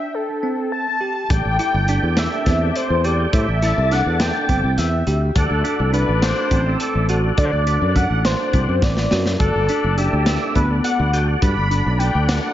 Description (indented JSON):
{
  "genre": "progressive instrumental, band music in an uneven meter",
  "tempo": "208 BPM (eighths)",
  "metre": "7/8",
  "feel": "straight",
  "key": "A dorian",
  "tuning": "A4 = 438 Hz",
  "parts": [
    { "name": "octave-doubled lead", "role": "melody", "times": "0.0-12.5 s", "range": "A4 to B5", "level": "-23 LUFS", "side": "left 1 dB", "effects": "chorus, phaser, tape echo" },
    { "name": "bell-like tine electric piano", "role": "arpeggios", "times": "0.0-12.4 s", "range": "B3 to G4", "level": "-26 LUFS", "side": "right 2 dB", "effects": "none" },
    { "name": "tonewheel organ", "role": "accompaniment", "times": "1.3-12.5 s", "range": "A3 to A4", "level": "-25 LUFS", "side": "equal", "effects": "chorus vibrato, slow rotary speaker" },
    { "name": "sustaining fretless electric bass", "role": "bass", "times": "1.3-12.4 s", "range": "F#1 to D3", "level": "-19 LUFS", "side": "equal", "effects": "none" },
    { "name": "crunchy breakbeat drum kit", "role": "drums", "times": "1.3-12.4 s", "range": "hi-hat, kick drum, snare drum", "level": "-22 LUFS", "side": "equal", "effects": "none" },
    { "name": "warm flugelhorn", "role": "second line", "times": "5.4-10.4 s", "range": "G4 to C5", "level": "-25 LUFS", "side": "left 2 dB", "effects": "tape echo" }
  ],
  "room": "moderate plate reverb, RT60 1.7 s, small room ambience",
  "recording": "dreamy mix soaked in reverb, nothing above 7.6 kHz",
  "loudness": "-16 LUFS",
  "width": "side -12 dB against mid",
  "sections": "0.0-1.3 A section; 1.3-12.5 B section",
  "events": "break 0.0-1.3; drum fill 8.8-9.4",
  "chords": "0.0 D7sus4; 1.3 Am7; 5.4 D7; 9.4 Gmaj7",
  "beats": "0.14 0.43 0.72 1.01 | 1.30 1.59 1.88 2.17 2.46 2.75 3.04 | 3.33 3.62 3.91 4.20 4.49 4.78 5.07 | 5.36 5.65 5.94 6.23 6.52 6.81 7.10 | 7.38 7.67 7.96 8.25 8.54 8.83 9.12 | 9.41 9.70 9.98 10.27 10.56 10.85 11.14 | 11.43 11.72 12.01 12.29"
}